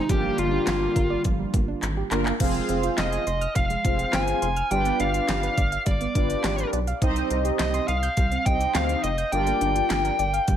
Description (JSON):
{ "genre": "synth-pop", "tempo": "104 BPM", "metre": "4/4", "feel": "straight", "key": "F dorian", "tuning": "A4 = 439 Hz", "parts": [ { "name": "bluesy overdriven lead guitar", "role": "melody", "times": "0.0-10.6 s", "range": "Eb4 to Ab5", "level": "-26 LUFS", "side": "left 1 dB", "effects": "distortion" }, { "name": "warm analog pad", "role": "sustained chords", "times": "0.0-2.4 s", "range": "D3 to F4", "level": "-33 LUFS", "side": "right 1 dB", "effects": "chorus" }, { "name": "mellow synth brass", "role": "accompaniment", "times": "0.1-10.2 s", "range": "Bb3 to F5", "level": "-28 LUFS", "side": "equal", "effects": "chorus" }, { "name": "soft round pluck", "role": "arpeggios", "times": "0.1-10.6 s", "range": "F3 to G6", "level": "-32 LUFS", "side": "right 6 dB", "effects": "chorus, tape echo" }, { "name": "rubbery square bass", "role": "bass", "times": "0.1-10.6 s", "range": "F1 to D2", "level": "-28 LUFS", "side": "equal", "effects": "none" }, { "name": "pop drum kit", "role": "drums", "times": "0.1-10.6 s", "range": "crash cymbal, handclaps, hi-hat, kick drum, snare drum", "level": "-26 LUFS", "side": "equal", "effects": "gated reverb" } ], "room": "light reverb", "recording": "none", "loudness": "-21 LUFS", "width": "side -10 dB against mid", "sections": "0.0-2.4 A section; 2.4-10.6 B section", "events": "drum fill 1.8-2.4", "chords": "0.1 Gm7; 2.4 Fm; 4.7 G7; 7.0 Cm; 9.3 Gm7" }